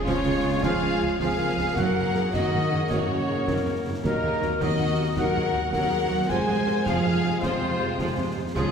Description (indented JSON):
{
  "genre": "cinematic, heroic adventure film score",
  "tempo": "106 BPM (dotted quarters)",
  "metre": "12/8",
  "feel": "straight",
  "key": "unclear",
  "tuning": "A4 = 440 Hz",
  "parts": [
    { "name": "clear symphonic violin section", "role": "second line", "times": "0.0-8.7 s", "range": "Ab4 to Ab5", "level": "-33 LUFS", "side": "left 2 dB", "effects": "none" },
    { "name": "mellow silver concert flute", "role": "second line", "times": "0.0-8.7 s", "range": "Ab4 to Ab5", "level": "-35 LUFS", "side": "left 1 dB", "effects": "none" },
    { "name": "warm clarinet", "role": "second line", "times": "0.0-8.7 s", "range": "F4 to Bb4", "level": "-35 LUFS", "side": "left 2 dB", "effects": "none" },
    { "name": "rich symphonic viola section", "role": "accompaniment", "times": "0.0-8.7 s", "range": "C3 to Bb3", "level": "-33 LUFS", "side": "right 2 dB", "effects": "none" },
    { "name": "mellow French horn section", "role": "sustained chords", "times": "0.0-8.7 s", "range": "Ab3 to Ab4", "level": "-32 LUFS", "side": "equal", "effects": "none" },
    { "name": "concert harp", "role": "arpeggios", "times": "0.0-8.7 s", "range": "Gb2 to C6", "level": "-37 LUFS", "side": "left 8 dB", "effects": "none" },
    { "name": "warm tuba", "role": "bass", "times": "0.0-8.6 s", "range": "F1 to Eb2", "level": "-34 LUFS", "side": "right 2 dB", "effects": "none" },
    { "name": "rich symphonic violin section", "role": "melody", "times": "0.1-8.7 s", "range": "Db4 to C5", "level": "-31 LUFS", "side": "left 5 dB", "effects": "none" },
    { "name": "mellow trumpet section", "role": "stabs", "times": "0.1-8.7 s", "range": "Ab4 to Ab5", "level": "-32 LUFS", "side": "right 2 dB", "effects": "none" },
    { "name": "clear symphonic double bass section", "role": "bass", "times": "0.1-8.6 s", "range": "Db2 to Gb2", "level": "-33 LUFS", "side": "right 3 dB", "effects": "none" },
    { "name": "warm symphonic cello section", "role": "bass", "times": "0.1-8.7 s", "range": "Ab2 to Ab3", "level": "-30 LUFS", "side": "right 3 dB", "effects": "none" },
    { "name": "concert snare drum, concert bass drum and clash cymbals", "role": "drums", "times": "0.1-8.7 s", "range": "none", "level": "-34 LUFS", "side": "equal", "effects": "none" },
    { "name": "timpani", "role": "percussion", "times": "8.6-8.7 s", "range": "Db3", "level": "-28 LUFS", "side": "right 1 dB", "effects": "none" }
  ],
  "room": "wet church reverb, RT60 2.8 s",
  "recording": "recorded in a church or concert hall",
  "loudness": "-22 LUFS",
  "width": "side -6 dB against mid",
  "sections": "0.0-8.7 A section",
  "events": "none",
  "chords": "0.0 Db; 1.8 Gb; 4.0 Ebm; 6.3 Fm",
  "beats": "0.05 0.62 1.19 | 1.76 2.33 2.90 3.47 | 4.03 4.60 5.16 5.72 | 6.29 6.86 7.42 7.98 | 8.55"
}